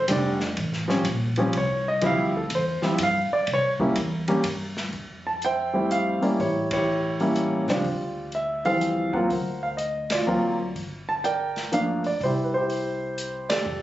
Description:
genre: jazz piano trio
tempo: 124 BPM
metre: 3/4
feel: swing 66% on 8ths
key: F major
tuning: A4 = 439 Hz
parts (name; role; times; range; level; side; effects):
- warm concert grand piano; melody; 0.0-13.8 s; E3 to A5; -23 LUFS; equal; plate reverb
- upright bass; bass; 0.0-13.8 s; F1 to G2; -32 LUFS; equal; none
- open jazz drum kit; drums; 0.1-13.6 s; hi-hat, kick drum, ride cymbal, snare drum; -34 LUFS; equal; none
room: light reverb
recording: recorded on a phone in the room, club reverb, nothing above 7.9 kHz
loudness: -22 LUFS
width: side -14 dB against mid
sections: 0.0-4.9 A section; 4.9-13.8 B section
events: grand piano solo 0.0-4.9; band accent 6.6, 10.0, 13.4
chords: 0.0 F6; 0.6 A7alt; 2.0 Dm11; 3.5 C7b9; 4.9 Fmaj9; 6.4 A7b9; 7.8 Dm11; 10.8 Gm9; 12.2 C

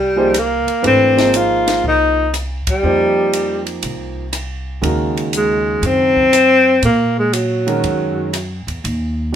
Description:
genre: modal jazz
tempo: 120 BPM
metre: 4/4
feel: swing 68% on 8ths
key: F phrygian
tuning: A4 = 440 Hz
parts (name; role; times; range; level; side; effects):
- breathy tenor saxophone; melody; 0.0-8.7 s; Gb3 to F4; -14 LUFS; left 1 dB; none
- upright bass; bass; 0.0-9.4 s; Ab1 to Bb2; -22 LUFS; equal; none
- warm concert grand piano; accompaniment; 0.2-9.4 s; Db3 to C5; -20 LUFS; right 3 dB; none
- compact cocktail drum kit; drums; 0.3-9.0 s; hi-hat, kick drum, ride cymbal, rim click, snare drum; -25 LUFS; equal; none
room: wet studio reverb, RT60 0.5 s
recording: minimal, uncompressed stereo recording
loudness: -13 LUFS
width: side -9 dB against mid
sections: 0.0-9.4 A section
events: band accent 2.6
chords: 0.0 Fm11; 4.8 Ebm7

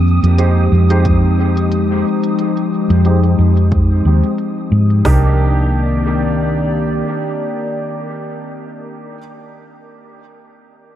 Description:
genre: ambient dub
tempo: 90 BPM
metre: 4/4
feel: swing 55% on 16ths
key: C minor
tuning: A4 = 440 Hz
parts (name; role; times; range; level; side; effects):
- warbly tape-like pad; sustained chords; 0.0-8.5 s; Eb3 to D5; -18 LUFS; left 2 dB; chorus, built-in reverb
- hollow-body short-scale fingered electric bass; bass; 0.0-7.0 s; C2 to Ab2; -13 LUFS; equal; none
- wind-like tuned noise texture; texture; 0.0-5.1 s; Eb6; -32 LUFS; right 2 dB; built-in reverb, ensemble chorus
- electronic hi-hat; drums; 0.2-5.0 s; none; -38 LUFS; left 1 dB; overdrive, low-pass filter on hats, dub echo
- clear upright piano; stabs; 0.4-9.2 s; Bb3 to C5; -25 LUFS; right 3 dB; ensemble chorus, low-pass filter, dub echo
- organic electronic drum kit; drums; 1.1-5.2 s; hi-hat, kick drum, snare drum; -17 LUFS; equal; overdrive
room: moderate huge ambient reverb, RT60 6.6 s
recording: dreamy mix soaked in reverb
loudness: -12 LUFS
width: side -12 dB against mid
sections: 0.0-5.0 A section; 5.0-7.7 B section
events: filter sweep on drum 0.0-5.0; filter sweep on upright piano 0.0-5.0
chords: 0.0 Fm9; 5.0 Cm9

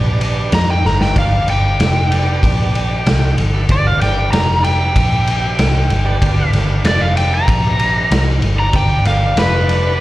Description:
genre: blues rock power trio and southern rock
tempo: 95 BPM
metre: 4/4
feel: straight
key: G mixolydian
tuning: A4 = 441 Hz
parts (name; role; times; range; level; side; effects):
- overdriven tonewheel organ; sustained chords; 0.0-10.0 s; D4 to F5; -25 LUFS; right 5 dB; wide subtle chorus
- vintage muted picked electric bass; bass; 0.0-10.0 s; F1 to F2; -16 LUFS; equal; none
- raw garage drum kit; drums; 0.2-9.8 s; kick drum, ride cymbal, snare drum; -18 LUFS; equal; none
- overdriven slide guitar; melody; 0.5-10.0 s; B4 to Bb5; -18 LUFS; equal; slapback echo, tape echo
room: little or no reverb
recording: live gig heard through the venue's PA, recital hall reverb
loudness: -12 LUFS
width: side -16 dB against mid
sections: 0.0-10.0 A section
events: electric slide guitar solo 0.0-10.0; drum fill 0.8-1.2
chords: 0.0 G

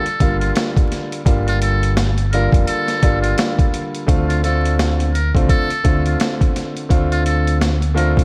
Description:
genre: hip hop, boom-bap hip-hop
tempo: 85 BPM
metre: 4/4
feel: swing 60% on 16ths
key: D minor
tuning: A4 = 443 Hz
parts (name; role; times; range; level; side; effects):
- trumpet with metal mute; melody; 0.0-8.1 s; F4 to Bb4; -26 LUFS; equal; high-pass filter, low-pass filter, tape echo
- warm grand piano; accompaniment; 0.0-8.2 s; D3 to F4; -24 LUFS; equal; cassette tape, high-pass filter, low-pass filter
- boom bap sampler-style drum kit; drums; 0.1-8.2 s; hi-hat, kick drum, snare drum; -20 LUFS; equal; none
- deep dub fingered electric bass; bass; 0.2-8.2 s; F1 to D2; -20 LUFS; equal; none
room: digital ambience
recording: vinyl crackle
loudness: -17 LUFS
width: mono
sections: 0.0-8.2 A section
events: none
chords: 0.0 Gm7; 4.1 Dm7

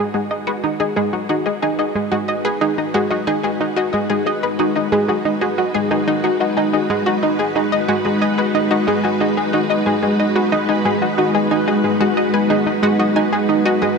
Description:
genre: ambient, sequencer-driven space music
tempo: 91 BPM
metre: 4/4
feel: straight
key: G# minor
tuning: A4 = 439 Hz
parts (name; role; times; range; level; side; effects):
- string machine, full ensemble; sustained chords; 0.1-14.0 s; G#3 to B4; -20 LUFS; equal; ensemble chorus
- wide unison pluck; arpeggios; 0.0-14.0 s; F#4 to G#5; -22 LUFS; moving between left 4 dB and right 2 dB; auto-pan, ping-pong delay
- analog pluck; riff; 0.0-13.9 s; G#3 to D#5; -19 LUFS; right 1 dB; chorus, ping-pong delay
room: wet huge ambient reverb, RT60 8.0 s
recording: none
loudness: -15 LUFS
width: side -4 dB against mid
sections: 0.0-14.0 A section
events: fade-in on string machine 0.0-14.0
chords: 0.0 G#m7

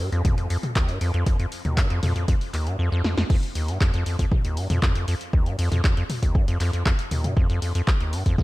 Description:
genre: acid house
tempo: 118 BPM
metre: 4/4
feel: straight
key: unclear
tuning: A4 = 441 Hz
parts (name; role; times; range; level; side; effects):
- acid bass, square; riff; 0.0-8.4 s; Eb2 to G2; -24 LUFS; equal; tube saturation, ping-pong delay
- punchy analog drum machine; drums; 0.1-8.4 s; crash cymbal, handclaps, hi-hat, snare drum, toms; -29 LUFS; left 1 dB; overdrive, studio reverb
- electronic kick drum; drums; 0.2-8.4 s; none; -21 LUFS; equal; overdrive, studio reverb
room: digital ambience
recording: dark, warm production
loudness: -21 LUFS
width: side -19 dB against mid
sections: 0.0-3.3 A section; 3.3-8.4 B section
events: filter sweep on acid bass 0.0-3.3; drum fill 3.0; drop 3.3-8.4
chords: none

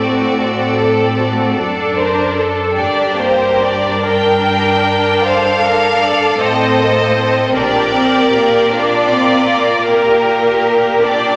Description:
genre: classical, slow romantic movement for string orchestra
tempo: 51 BPM (dotted quarters)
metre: 12/8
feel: rubato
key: G minor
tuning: A4 = 440 Hz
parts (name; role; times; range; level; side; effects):
- rich studio violin section; melody; 0.0-11.4 s; Bb4 to G5; -21 LUFS; equal; none
- rich studio violin section; second line; 0.0-11.4 s; Bb3 to Bb4; -17 LUFS; equal; none
- rich studio viola section; accompaniment; 0.0-11.4 s; F#4 to D5; -18 LUFS; equal; none
- rich studio cello section; bass; 0.0-11.4 s; F#2 to Bb2; -24 LUFS; equal; none
- rich studio double bass section; bass; 2.8-8.3 s; G1 to Bb1; -36 LUFS; equal; none
room: wet scoring stage reverb, RT60 1.6 s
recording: none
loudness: -14 LUFS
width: mono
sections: 0.0-11.4 A section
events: none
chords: 0.0 D7/A; 2.8 Gm; 7.6 Gm/Bb

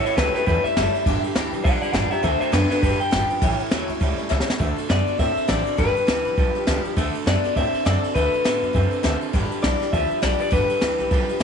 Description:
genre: rockabilly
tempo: 203 BPM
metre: 4/4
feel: swing 60% on 8ths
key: D major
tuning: A4 = 440 Hz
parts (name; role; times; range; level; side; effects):
- electric guitar through a small old amp; melody; 0.0-11.4 s; D4 to G5; -23 LUFS; left 3 dB; tape echo
- picked swing-style acoustic guitar; accompaniment; 0.0-11.4 s; A2 to C#5; -30 LUFS; left 14 dB; none
- electric guitar through a small old amp; riff; 0.0-11.4 s; G2 to C4; -28 LUFS; right 14 dB; none
- upright bass; bass; 0.0-11.4 s; F#1 to A2; -25 LUFS; equal; none
- jazz brush drum kit; drums; 0.1-11.4 s; kick drum, ride cymbal, snare drum; -25 LUFS; equal; none
room: light reverb, small room ambience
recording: 1960s-style stereo with parts hard left and right, nothing above 11.0 kHz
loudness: -19 LUFS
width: side -6 dB against mid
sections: 0.0-4.6 A section; 4.6-11.4 B section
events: clean electric guitar solo 0.0-4.6; drum fill 4.3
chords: 0.0 A; 1.1 G; 2.2 D; 2.8 G; 3.4 A; 4.6 D; 5.8 G; 7.0 D; 9.3 G

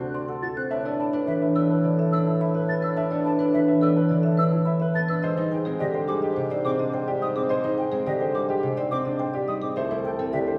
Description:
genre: classical, minimalist pattern music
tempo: 106 BPM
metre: 4/4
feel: straight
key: unclear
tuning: A4 = 441 Hz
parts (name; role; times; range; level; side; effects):
- marimba with soft mallets; melody; 0.0-10.6 s; G4 to C6; -34 LUFS; equal; none
- mellow French horn; second line; 0.0-10.6 s; E4 to C5; -36 LUFS; equal; none
- concert harp; accompaniment; 0.0-10.6 s; C3 to D4; -27 LUFS; equal; none
- dark grand piano; arpeggios; 0.0-10.6 s; C4 to E5; -32 LUFS; equal; none
- mellow bassoon; bass; 0.0-10.6 s; C2 to A2; -34 LUFS; equal; none
- concert flute; arpeggios; 0.4-10.4 s; Eb5 to A6; -36 LUFS; equal; none
room: wet recital hall reverb, RT60 1.6 s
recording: heard from further back in the room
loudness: -24 LUFS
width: mono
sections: 0.0-10.6 A section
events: none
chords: 0.0 D; 0.7 Asus2; 5.2 Abmaj7; 9.8 Cadd9

